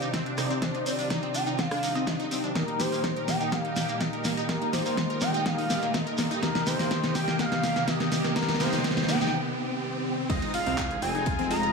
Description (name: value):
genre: progressive house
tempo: 124 BPM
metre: 4/4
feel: straight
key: C minor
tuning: A4 = 440 Hz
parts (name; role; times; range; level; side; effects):
- expressive synth lead; melody; 0.0-11.7 s; Bb4 to Bb5; -32 LUFS; equal; chorus, sidechain pumping, dub echo
- warm studio string section; sustained chords; 0.0-11.7 s; Bb2 to G4; -35 LUFS; equal; sidechain pumping
- wide unison pluck; arpeggios; 0.0-11.7 s; Bb3 to Bb4; -33 LUFS; equal; phaser, sidechain pumping, tape echo
- supersaw stab; stabs; 0.0-11.7 s; C3 to Eb5; -34 LUFS; right 2 dB; sidechain pumping, low-pass filter, tape echo
- pop drum kit; drums; 0.0-11.7 s; crash cymbal, handclaps, hi-hat, rim click, snare drum; -30 LUFS; left 1 dB; none
- shekere; percussion; 0.0-9.3 s; none; -39 LUFS; right 1 dB; none
- riser and impact; sound effects; 0.0-11.7 s; none; -36 LUFS; right 1 dB; none
- electronic kick drum; drums; 0.1-11.4 s; none; -35 LUFS; equal; high-pass filter on kick
- fat analog bass; bass; 10.3-11.7 s; F1 to C2; -33 LUFS; equal; sidechain pumping
- tight metal drum kit; drums; 10.3-11.6 s; ride cymbal, snare drum; -45 LUFS; left 6 dB; none
room: moderate digital room reverb, RT60 1.0 s, small room ambience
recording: studio ambience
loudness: -25 LUFS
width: side -4 dB against mid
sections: 0.0-10.3 A section; 10.3-11.7 B section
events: build-up 0.0-10.3; drum fill 0.0-9.3; filter sweep on supersaw synth 0.0-10.3; filter sweep on analog synth lead 0.0-10.3; break 9.3-10.3; drop 10.3-11.7; impact 10.3-11.7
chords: 0.0 Cmadd9; 2.6 Eb; 6.4 Cm; 10.3 Fm7